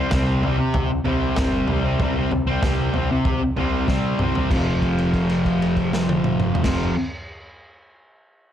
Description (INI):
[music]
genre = garage rock duo or trio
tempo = 96 BPM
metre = 4/4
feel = straight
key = unclear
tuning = A4 = 440 Hz
[part]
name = fuzz guitar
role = riff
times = 0.0-6.9 s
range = F2 to C4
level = -20 LUFS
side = equal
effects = distortion
[part]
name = growling picked electric bass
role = bass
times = 0.0-6.9 s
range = F1 to C3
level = -27 LUFS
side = equal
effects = overdrive
[part]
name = crunchy breakbeat drum kit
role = drums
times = 0.1-6.8 s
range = crash cymbal, kick drum, snare drum, toms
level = -25 LUFS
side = equal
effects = none
[sound]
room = small room reverb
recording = none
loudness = -18 LUFS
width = side -10 dB against mid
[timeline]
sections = 0.0-4.5 A section; 4.5-7.0 B section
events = drum fill 3.9-4.5; held note 4.5-6.6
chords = 0.0 C5; 4.5 F5